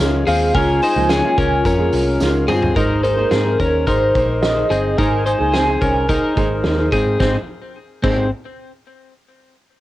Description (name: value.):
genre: jangly indie pop.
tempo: 108 BPM.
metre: 4/4.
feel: straight.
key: Ab major.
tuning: A4 = 440 Hz.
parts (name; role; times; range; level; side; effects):
vibraphone with medium hard mallets; second line; 0.0-2.7 s; Eb4 to Ab4; -23 LUFS; left 3 dB; none.
fingerpicked plugged-in steel-string acoustic guitar; accompaniment; 0.0-8.3 s; Db3 to C5; -23 LUFS; right 4 dB; none.
twelve-string electric guitar; arpeggios; 0.0-8.3 s; C4 to C5; -20 LUFS; left 2 dB; none.
vintage muted picked electric bass; bass; 0.0-8.3 s; G1 to Ab2; -21 LUFS; equal; none.
warm velvety synth lead; melody; 0.3-6.6 s; Bb4 to Ab5; -20 LUFS; right 1 dB; chorus, cassette tape.
loose indie drum kit; drums; 0.3-8.2 s; crash cymbal, hi-hat, kick drum, snare drum, toms; -23 LUFS; equal; none.
tambourine; percussion; 0.3-2.6 s; none; -40 LUFS; right 2 dB; none.
room: light reverb.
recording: home recording on cassette.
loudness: -14 LUFS.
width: side -15 dB against mid.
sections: 0.0-2.8 A section; 2.8-7.2 B section; 7.2-9.4 C section.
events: drum fill 2.2-2.8.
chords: 0.0 Db6; 2.8 Abadd9.